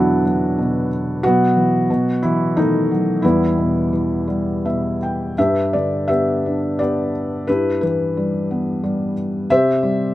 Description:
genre	classical, lyrical solo piano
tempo	80-93 BPM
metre	3/4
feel	rubato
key	E minor, G major from 5.4 s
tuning	A4 = 441 Hz
part	felt-muted upright piano	solo	0.0-10.1 s	E2 to G5	-16 LUFS	equal	none
room	little or no reverb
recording	close, detailed microphones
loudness	-16 LUFS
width	side -15 dB against mid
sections	0.0-5.4 A section; 5.4-10.1 B section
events	felt piano fill 4.3-5.4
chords	0.0 Esus2; 1.2 E5/B; 1.9 B7; 3.2 Em; 5.4 G; 7.5 Em/G; 9.5 C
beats	0.58 | 1.23 1.89 2.56 | 3.23 3.91 4.63 | 5.37 6.08 6.78 | 7.47 8.15 8.83 | 9.49

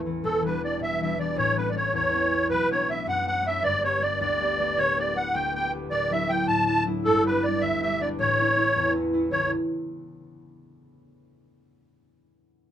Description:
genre	celtic folk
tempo	106 BPM (dotted quarters)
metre	6/8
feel	straight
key	A mixolydian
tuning	A4 = 439 Hz
part	concert harp	accompaniment	0.0-11.1 s	D1 to A4	-28 LUFS	left 1 dB	none
part	musette accordion	melody	0.2-9.5 s	A4 to A5	-23 LUFS	right 1 dB	none
room	light reverb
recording	minimal, uncompressed stereo recording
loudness	-22 LUFS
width	side -10 dB against mid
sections	0.2-9.3 A section; 9.3-10.5 B section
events	none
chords	0.2 Em7; 1.4 Aadd9; 2.5 Bm7; 3.6 Gadd9; 5.9 Dadd9; 7.0 G; 8.2 A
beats	| 0.23 0.80 | 1.37 1.94 | 2.50 3.07 | 3.64 4.20 | 4.77 5.34 | 5.91 6.48 | 7.05 7.62 | 8.19 8.75 | 9.32 9.89

